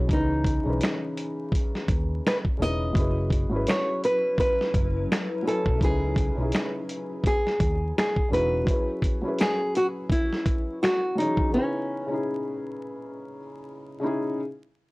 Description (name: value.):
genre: lo-fi hip hop.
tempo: 84 BPM.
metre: 4/4.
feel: swing 59% on 16ths.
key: C# minor.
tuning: A4 = 440 Hz.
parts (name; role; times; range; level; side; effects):
nylon-string guitar; melody; 0.0-13.6 s; C#4 to D#5; -27 LUFS; equal; none.
felt-muted upright piano; accompaniment; 0.0-14.4 s; C#3 to G#5; -31 LUFS; left 1 dB; cassette tape.
vintage muted fingered electric bass; bass; 0.0-8.6 s; E1 to D#2; -28 LUFS; equal; none.
dusty soul sampler-style drum kit; drums; 0.1-11.5 s; finger snaps, hi-hat, kick drum, snare drum; -25 LUFS; equal; vintage 12-bit sampler grit.
granular cloud pad; sustained chords; 4.0-5.8 s; F#3 to B4; -36 LUFS; left 2 dB; built-in reverb.
room: little or no reverb.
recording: dry, gritty hardware recording, transformer saturation, vinyl crackle.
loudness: -23 LUFS.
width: side -23 dB against mid.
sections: 0.0-14.4 A section.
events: none.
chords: 0.1 C#m9; 3.0 F#7sus4; 5.8 C#m9; 8.7 F#7sus4; 11.5 C#m9.